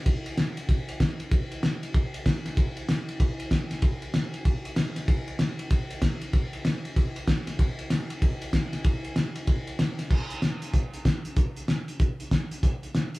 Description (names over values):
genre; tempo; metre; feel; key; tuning
rock; 191 BPM; 4/4; swing 63% on 8ths; none; none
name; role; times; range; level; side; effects
cloth-damped thuddy drum kit; drums; 0.1-13.2 s; crash cymbal, hi-hat, kick drum, ride cymbal, snare drum; -24 LUFS; equal; none
room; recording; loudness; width
light reverb; band playing live in one room; -24 LUFS; side -21 dB against mid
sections
0.0-10.1 A section; 10.1-13.2 B section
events
none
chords
none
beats
| 0.06 0.38 0.69 1.00 | 1.32 1.63 1.94 2.26 | 2.57 2.88 3.20 3.51 | 3.83 4.14 4.45 4.77 | 5.08 5.40 5.71 6.02 | 6.34 6.65 6.96 7.28 | 7.59 7.91 8.22 8.53 | 8.85 9.16 9.47 9.79 | 10.11 10.42 10.73 11.05 | 11.37 11.68 12.00 12.31 | 12.63 12.95